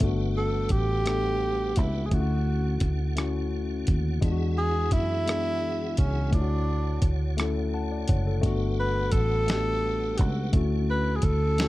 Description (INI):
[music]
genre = slow six-eight R&B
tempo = 57 BPM (dotted quarters)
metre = 6/8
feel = straight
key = unclear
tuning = A4 = 440 Hz
[part]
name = tine electric piano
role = accompaniment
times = 0.0-11.7 s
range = G#3 to A5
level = -31 LUFS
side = left 5 dB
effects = overdrive, plate reverb
[part]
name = tonewheel organ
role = sustained chords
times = 0.0-11.7 s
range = D3 to F#5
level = -38 LUFS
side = right 2 dB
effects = overdrive, chorus vibrato, fast rotary speaker, plate reverb
[part]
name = vintage muted fingered electric bass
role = bass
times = 0.0-11.7 s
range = F#1 to F#2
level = -27 LUFS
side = equal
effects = none
[part]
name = dusty soul sampler-style drum kit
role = drums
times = 0.0-11.7 s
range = hi-hat, kick drum, rim click, snare drum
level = -25 LUFS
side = equal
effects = none
[part]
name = breathy tenor saxophone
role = melody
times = 0.4-11.7 s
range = C#4 to B4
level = -29 LUFS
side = right 1 dB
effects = plate reverb, tape echo
[sound]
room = light reverb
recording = dark, warm production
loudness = -23 LUFS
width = side -17 dB against mid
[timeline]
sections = 0.0-11.7 A section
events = tine electric piano fill 7.4-8.4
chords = 0.0 Gmaj9; 2.1 Dmaj7; 4.2 E9; 6.3 Dmaj7; 8.4 Gmaj9; 10.5 Dmaj7